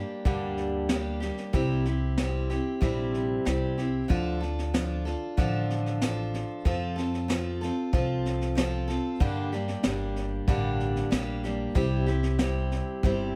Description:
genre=honky-tonk and classic country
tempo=94 BPM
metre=4/4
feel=straight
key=D minor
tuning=A4 = 440 Hz
part: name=picked steel-string acoustic guitar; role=accompaniment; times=0.0-13.4 s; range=G2 to A4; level=-32 LUFS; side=equal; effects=none
part: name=vintage brush drum kit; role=drums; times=0.2-13.2 s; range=hi-hat, kick drum, snare drum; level=-32 LUFS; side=equal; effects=none
part: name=upright bass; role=bass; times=0.3-13.4 s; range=G1 to G2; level=-33 LUFS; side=equal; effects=none
room=little or no reverb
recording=close, detailed microphones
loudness=-28 LUFS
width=mono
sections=0.0-4.1 A section; 4.1-13.4 B section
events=none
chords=0.0 Gm; 1.5 C; 4.1 Dm; 6.7 F; 9.2 Gm; 11.8 C

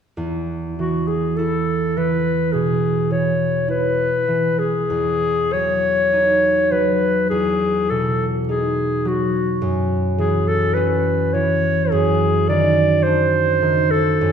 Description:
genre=classical, impressionist duo for clarinet and harp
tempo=51 BPM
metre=4/4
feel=uneven beats, rubato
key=E major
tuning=A4 = 440 Hz
part: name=concert harp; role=accompaniment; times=0.2-14.3 s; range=E2 to E4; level=-20 LUFS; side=right 2 dB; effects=none
part: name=bright clarinet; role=melody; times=0.8-14.3 s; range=F#4 to D5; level=-18 LUFS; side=left 1 dB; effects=none
room=wet scoring stage reverb, RT60 1.7 s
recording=recorded in a church or concert hall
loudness=-16 LUFS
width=side -7 dB against mid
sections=0.2-14.3 A section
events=none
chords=0.2 E5; 4.9 Emaj13; 9.6 F#5; 11.9 G#7#11/F#

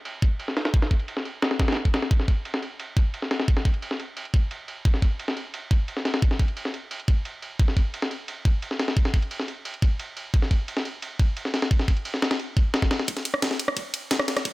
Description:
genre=drum and bass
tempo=175 BPM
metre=4/4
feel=straight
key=none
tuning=none
part: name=breakbeat sampler-style drum kit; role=drums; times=0.1-14.5 s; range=ride cymbal, snare drum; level=-28 LUFS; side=left 1 dB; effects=high-pass filter on cymbals, low-pass filter on cymbals, high-pass filter on snare, low-pass filter on snare
part: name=electronic kick drum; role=drums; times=0.2-14.5 s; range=none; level=-21 LUFS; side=equal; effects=high-pass filter on kick
part: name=drum and bass drum kit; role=drums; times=13.1-14.5 s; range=hi-hat, rim click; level=-26 LUFS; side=equal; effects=none
room=little or no reverb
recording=none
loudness=-23 LUFS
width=side -20 dB against mid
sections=0.0-13.1 A section; 13.1-14.5 B section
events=build-up 13.1-14.5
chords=none

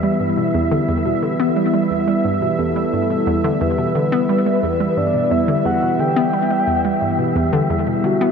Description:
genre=ambient, sequencer-driven space music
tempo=88 BPM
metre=4/4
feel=straight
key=E minor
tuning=A4 = 440 Hz
part: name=sweeping resonant pad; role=sustained chords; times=0.0-8.3 s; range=E3 to E5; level=-19 LUFS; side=right 1 dB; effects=chorus
part: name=hollow square pluck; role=riff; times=0.0-8.3 s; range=E2 to B3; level=-20 LUFS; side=equal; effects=chorus, ping-pong delay
part: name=wind-like tuned noise texture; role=texture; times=0.0-8.3 s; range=E5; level=-30 LUFS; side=right 1 dB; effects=built-in reverb
part: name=soft octave-layered synth lead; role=melody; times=2.6-8.3 s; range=F#4 to G5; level=-21 LUFS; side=left 2 dB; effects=chorus, ping-pong delay
room=wet huge ambient reverb, RT60 9.7 s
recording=none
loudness=-16 LUFS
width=side -6 dB against mid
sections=0.0-8.3 A section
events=none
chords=0.0 Em

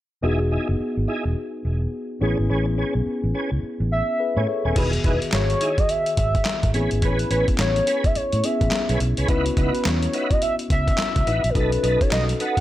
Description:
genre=R&B, new jack swing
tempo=106 BPM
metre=4/4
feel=swing 61% on 16ths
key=E major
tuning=A4 = 439 Hz
part: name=mellow tine electric piano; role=accompaniment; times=0.2-12.6 s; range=D#3 to G#5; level=-27 LUFS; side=left 3 dB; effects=phaser
part: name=tonewheel organ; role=stabs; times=0.2-12.6 s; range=B3 to B4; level=-29 LUFS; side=right 2 dB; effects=chorus vibrato, fast rotary speaker
part: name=vintage muted fingered electric bass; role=bass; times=0.2-12.3 s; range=D#1 to A2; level=-23 LUFS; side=equal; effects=none
part: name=warm velvety synth lead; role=melody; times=3.9-12.6 s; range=A#4 to F#5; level=-24 LUFS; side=equal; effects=chorus
part: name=boom bap sampler-style drum kit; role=drums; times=4.8-12.6 s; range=crash cymbal, handclaps, hi-hat, kick drum, snare drum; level=-23 LUFS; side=equal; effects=gated reverb
room=little or no reverb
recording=none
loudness=-19 LUFS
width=side -14 dB against mid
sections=0.2-4.8 A section; 4.8-12.6 B section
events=none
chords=0.2 Emaj7; 2.2 Amaj9; 4.8 Emaj7; 6.7 Amaj9; 9.3 C#m11; 11.6 B7

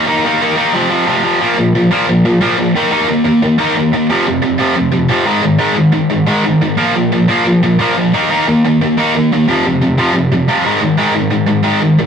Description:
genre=punk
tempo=178 BPM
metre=4/4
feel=straight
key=unclear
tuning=A4 = 440 Hz
part: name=tight distorted guitar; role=solo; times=0.0-12.1 s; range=F2 to Eb4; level=-10 LUFS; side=equal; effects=distortion
room=moderate stone room reverb, RT60 1.0 s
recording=rough rehearsal-room recording, warm saturation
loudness=-10 LUFS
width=side -7 dB against mid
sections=0.0-1.4 A section; 1.4-12.1 B section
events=none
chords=0.0 Eb5; 0.7 F5; 1.4 Bb5; 2.7 Eb5; 4.1 F5; 5.3 Ab5; 6.8 Bb5; 8.1 Eb5; 9.5 F5; 10.7 Ab5

